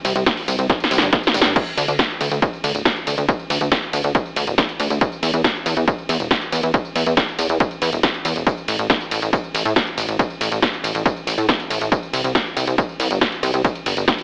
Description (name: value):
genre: uplifting trance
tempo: 139 BPM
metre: 4/4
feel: straight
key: unclear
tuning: A4 = 440 Hz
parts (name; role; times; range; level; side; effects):
- plucky analog bass; bass; 0.0-14.1 s; D1 to A2; -20 LUFS; equal; sidechain pumping
- punchy analog drum machine; drums; 0.0-14.2 s; crash cymbal, hi-hat, ride cymbal, snare drum, tambourine; -20 LUFS; equal; overdrive
- electronic kick drum; drums; 0.3-14.2 s; none; -20 LUFS; equal; overdrive
room: light reverb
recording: AM radio sound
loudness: -17 LUFS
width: side -38 dB against mid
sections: 0.0-14.2 A section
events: drum fill 0.7-1.6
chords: none